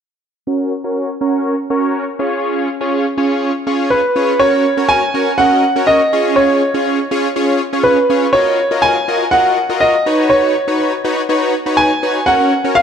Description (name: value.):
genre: pop.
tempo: 122 BPM.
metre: 4/4.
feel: straight.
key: F# major.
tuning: A4 = 440 Hz.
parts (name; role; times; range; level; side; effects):
big bright polysynth; accompaniment; 0.5-12.8 s; C#4 to D#5; -15 LUFS; equal; chorus, low-pass filter.
warm grand piano; melody; 3.9-12.8 s; B4 to G#5; -13 LUFS; equal; digital delay.
room: moderate lush hall reverb, RT60 2.9 s.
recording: dark, warm production.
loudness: -12 LUFS.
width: side -8 dB against mid.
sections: 0.5-4.4 A section; 4.4-12.8 B section.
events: filter sweep on analog polysynth 0.5-4.4.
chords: 0.5 F#; 2.2 C#; 4.4 F#; 6.1 C#; 8.3 D#madd9; 10.1 Badd9/D#; 12.3 F#.